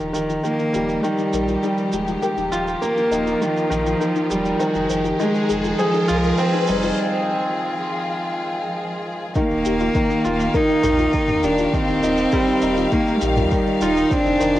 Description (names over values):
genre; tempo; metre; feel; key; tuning
piano and strings electronica; 101 BPM; 4/4; straight; unclear; A4 = 440 Hz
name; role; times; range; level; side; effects
clear studio string section; sustained chords; 0.0-14.6 s; Eb3 to F5; -28 LUFS; left 1 dB; sidechain pumping
warm sub bass; bass; 0.0-14.6 s; Eb1 to C2; -29 LUFS; equal; sidechain pumping
electronic shaker and toms; drums; 0.0-14.6 s; none; -32 LUFS; right 1 dB; none
riser; sound effects; 2.3-7.0 s; none; -29 LUFS; left 1 dB; none
bright concert grand piano; riff; 0.1-14.6 s; Eb3 to Ab4; -22 LUFS; equal; tape echo
soft round pluck; arpeggios; 0.2-14.6 s; Eb4 to C5; -29 LUFS; left 8 dB; chorus, sidechain pumping, tape echo
warm cello; melody; 0.4-14.6 s; F3 to Eb4; -22 LUFS; right 1 dB; cassette tape
electronic kick drum; drums; 9.4-14.2 s; none; -24 LUFS; equal; none
room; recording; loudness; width
moderate spring reverb, RT60 1.9 s; home recording on cassette; -18 LUFS; side -14 dB against mid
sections
0.0-9.4 A section; 9.4-14.6 B section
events
build-up 0.0-9.4; riser 2.3-7.0; break 7.0-9.4; drop 9.4-14.6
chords
0.0 Ebadd9; 4.6 Fm7; 9.4 Ebadd9